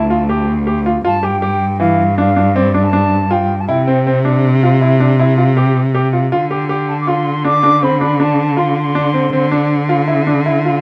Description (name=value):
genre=contemporary instrumental, chamber music in an uneven meter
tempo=159 BPM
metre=7/4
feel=straight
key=D dorian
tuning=A4 = 440 Hz
part: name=reedy baroque flute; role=melody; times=0.0-9.5 s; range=D5 to D6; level=-20 LUFS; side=equal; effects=none
part: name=clear concert grand piano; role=arpeggios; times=0.0-10.8 s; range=E3 to G4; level=-19 LUFS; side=equal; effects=none
part: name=rich cello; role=bass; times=0.0-10.8 s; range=D2 to D3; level=-17 LUFS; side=equal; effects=none
room=light reverb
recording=dark, warm production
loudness=-14 LUFS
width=mono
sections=0.0-10.8 A section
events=none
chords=0.0 Dm; 1.0 G5; 3.7 N.C.; 6.3 Dm7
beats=0.29 0.67 | 1.04 1.42 1.80 2.18 2.55 2.93 3.31 | 3.68 4.06 4.44 4.81 5.19 5.57 5.94 | 6.32 6.70 7.07 7.45 7.83 8.20 8.58 | 8.96 9.33 9.71 10.09 10.46